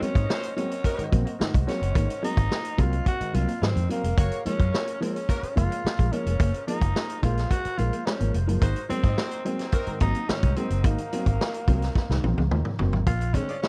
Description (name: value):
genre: funk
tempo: 108 BPM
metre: 4/4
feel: straight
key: unclear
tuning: A4 = 440 Hz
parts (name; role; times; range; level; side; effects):
- raspy tenor saxophone; melody; 0.0-13.7 s; Bb3 to Gb4; -34 LUFS; equal; none
- bright large flute ensemble; sustained chords; 0.0-13.0 s; Eb4 to Eb5; -44 LUFS; equal; none
- electric guitar at the edge of break-up; riff; 0.0-13.5 s; F3 to Bb3; -38 LUFS; equal; ensemble chorus
- warm upright piano; stabs; 0.0-13.5 s; Ab2 to C4; -34 LUFS; equal; none
- vintage muted fingered electric bass; bass; 0.0-13.4 s; F1 to Ab2; -28 LUFS; equal; none
- vintage drum kit; drums; 0.0-13.7 s; hi-hat, kick drum, snare drum, toms; -28 LUFS; equal; none
- warm horn section; second line; 0.2-10.0, 13.5-13.6 s; Bb3 to F5; -37 LUFS; equal; none
room: little or no reverb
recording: dark, warm production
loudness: -25 LUFS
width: mono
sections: 0.0-13.1 A section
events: drum fill 12.0-13.1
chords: 0.0 Ab9; 4.2 Gbmaj7; 8.6 Ab9; 13.1 Bb9